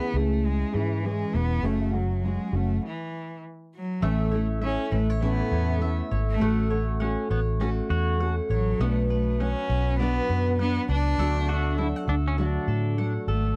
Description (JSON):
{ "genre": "pop", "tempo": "100 BPM", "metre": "4/4", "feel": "swing 60% on 16ths", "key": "unclear", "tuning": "A4 = 436 Hz", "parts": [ { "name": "rich cello", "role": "melody", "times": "0.0-13.6 s", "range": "E3 to D4", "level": "-32 LUFS", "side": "equal", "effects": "none" }, { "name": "nylon-string guitar", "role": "accompaniment", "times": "0.0-13.6 s", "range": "F#2 to A4", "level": "-32 LUFS", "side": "equal", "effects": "double-tracked" }, { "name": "vintage muted fingered electric bass", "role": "bass", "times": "0.1-13.5 s", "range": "E1 to A2", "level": "-28 LUFS", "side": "equal", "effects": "none" }, { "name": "mandolin", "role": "arpeggios", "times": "4.0-13.6 s", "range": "A3 to F#5", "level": "-39 LUFS", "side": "equal", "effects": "none" }, { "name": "pedal steel guitar", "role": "second line", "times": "7.0-13.1 s", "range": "B3 to F#4", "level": "-35 LUFS", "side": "equal", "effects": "none" } ], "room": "little or no reverb", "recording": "dry, close 1970s-style studio recording", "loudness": "-26 LUFS", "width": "mono", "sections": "0.0-4.0 A section; 4.0-13.6 B section", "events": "stop 2.8-4.0", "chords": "0.0 C#m; 1.6 F#m; 2.8 N.C.; 4.0 A; 6.4 F#m/A; 8.8 Bm; 11.2 D" }